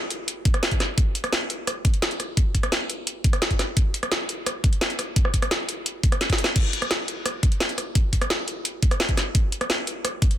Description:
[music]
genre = drum and bass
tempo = 172 BPM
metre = 4/4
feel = straight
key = none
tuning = none
[part]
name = drum and bass drum kit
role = drums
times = 0.1-10.4 s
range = crash cymbal, hi-hat, rim click, snare drum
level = -24 LUFS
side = equal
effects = soft clipping on snare
[part]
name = electronic kick drum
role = drums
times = 0.5-10.3 s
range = none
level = -21 LUFS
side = equal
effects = none
[sound]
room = light reverb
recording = dense, heavily limited modern master, faint mains hum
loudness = -21 LUFS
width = side -12 dB against mid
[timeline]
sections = 0.0-10.4 A section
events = drum fill 6.2-6.6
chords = none

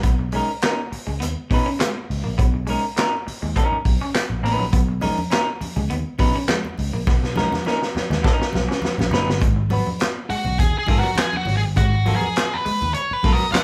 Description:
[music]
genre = funk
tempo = 102 BPM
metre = 4/4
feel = straight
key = G# minor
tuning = A4 = 443 Hz
[part]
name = semi-hollow electric guitar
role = riff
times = 0.0-13.6 s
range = F#3 to C#4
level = -32 LUFS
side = equal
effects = phaser
[part]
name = vintage muted picked electric bass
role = bass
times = 0.0-13.4 s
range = F#1 to B2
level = -26 LUFS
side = equal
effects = none
[part]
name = vintage drum kit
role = drums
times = 0.0-13.6 s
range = handclaps, hi-hat, kick drum, snare drum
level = -24 LUFS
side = equal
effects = none
[part]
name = semi-hollow electric guitar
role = accompaniment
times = 0.3-13.5 s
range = B3 to B4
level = -27 LUFS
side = equal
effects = none
[part]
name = congas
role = percussion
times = 4.7-13.6 s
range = none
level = -32 LUFS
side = equal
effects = none
[part]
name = octave-fuzz lead guitar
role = melody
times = 10.3-13.6 s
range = F#4 to F#5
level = -25 LUFS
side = equal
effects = distortion, slapback echo
[sound]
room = light reverb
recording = band playing live in one room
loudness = -21 LUFS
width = mono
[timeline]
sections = 0.0-9.4 A section; 9.4-13.6 B section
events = drum fill 7.1-9.4; lead electric guitar solo 9.4-13.6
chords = 0.0 G#madd9; 9.4 G#m9

